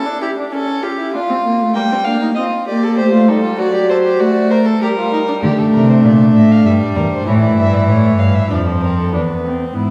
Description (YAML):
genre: classical, baroque-style fugue for string quartet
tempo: 98 BPM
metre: 3/4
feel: straight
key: unclear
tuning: A4 = 440 Hz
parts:
  - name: warm violin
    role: second line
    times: 0.0-9.9 s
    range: Bb3 to Bb4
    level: -23 LUFS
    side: equal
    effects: none
  - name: rich viola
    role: accompaniment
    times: 0.0-9.9 s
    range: E3 to F4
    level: -17 LUFS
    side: equal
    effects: none
  - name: dark violin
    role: melody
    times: 1.7-9.1 s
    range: G4 to G5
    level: -22 LUFS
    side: equal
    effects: none
  - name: rich cello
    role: bass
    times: 5.4-9.9 s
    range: E2 to D3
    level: -17 LUFS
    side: equal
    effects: none
room: wet recital hall reverb, RT60 1.6 s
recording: heard from further back in the room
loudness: -14 LUFS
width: mono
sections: 0.0-9.1 A section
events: none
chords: 0.0 A7; 1.1 Dm (rootless); 1.8 Gm; 3.0 Am7b5; 3.6 D7/F#; 4.8 Gm; 5.4 D5; 6.7 Em7b5/G; 7.3 A7; 8.5 Dm/F; 9.1 E